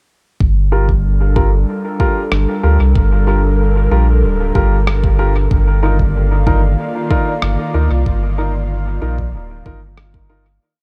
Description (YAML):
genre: ambient dub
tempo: 94 BPM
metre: 4/4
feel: straight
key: G minor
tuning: A4 = 441 Hz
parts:
  - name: airy breathy pad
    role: sustained chords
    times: 0.4-10.6 s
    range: Eb3 to F5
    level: -25 LUFS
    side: equal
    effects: chorus
  - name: warm sub bass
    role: bass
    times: 0.4-10.6 s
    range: D1 to D2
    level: -16 LUFS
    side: equal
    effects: none
  - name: electronic kick drum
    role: drums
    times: 0.4-10.3 s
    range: none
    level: -19 LUFS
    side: equal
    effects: studio reverb
  - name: dark upright piano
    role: stabs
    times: 0.7-10.4 s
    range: Eb4 to Bb4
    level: -24 LUFS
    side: equal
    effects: low-pass filter, dub echo
  - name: electronic rim click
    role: drums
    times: 2.3-10.1 s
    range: none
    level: -27 LUFS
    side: equal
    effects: studio reverb, dub echo
  - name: bubbling stepped-filter texture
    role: texture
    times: 6.0-10.6 s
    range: D5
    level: -33 LUFS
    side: equal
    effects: chorus, built-in reverb
room: little or no reverb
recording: none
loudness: -15 LUFS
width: mono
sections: 0.4-10.6 groove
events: fade-out 7.2-10.6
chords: 0.4 Gm7; 5.5 Ebsus2/G